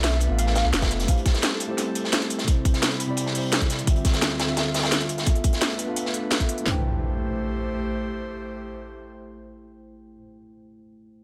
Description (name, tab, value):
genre	liquid drum and bass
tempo	172 BPM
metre	4/4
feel	straight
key	A minor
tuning	A4 = 440 Hz
part	soft round pluck	melody	0.0-1.0 s	E5 to F5	-34 LUFS	equal	ensemble chorus, delay
part	mellow tine electric piano	accompaniment	0.0-11.2 s	C3 to G5	-34 LUFS	equal	vintage 12-bit sampler grit, low-pass filter, delay
part	airy breathy pad	sustained chords	0.0-10.2 s	D2 to B5	-35 LUFS	equal	chorus, sidechain pumping
part	warm sub bass	bass	0.0-1.1 s	F1 to B1	-26 LUFS	equal	none
part	crunchy breakbeat drum kit	drums	0.0-6.4 s	hi-hat, snare drum	-30 LUFS	equal	high-pass filter on hats, high-pass filter on snare, high-pass filter on room
part	drum and bass drum kit	drums	0.0-6.6 s	hi-hat, snare drum	-28 LUFS	equal	none
part	drum and bass drum kit	drums	0.8-6.7 s	kick drum, snare drum	-24 LUFS	equal	none
part	impact	sound effects	6.7-10.2 s	none	-33 LUFS	equal	none
room	light reverb, digital ambience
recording	none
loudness	-24 LUFS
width	mono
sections	0.0-6.7 A section; 6.7-9.5 B section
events	filter sweep on tine electric piano 0.0-6.7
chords	0.0 Bm7b5; 1.1 Am7; 2.5 Cmaj7; 3.9 Dm9; 5.3 Bm7b5; 6.7 Am7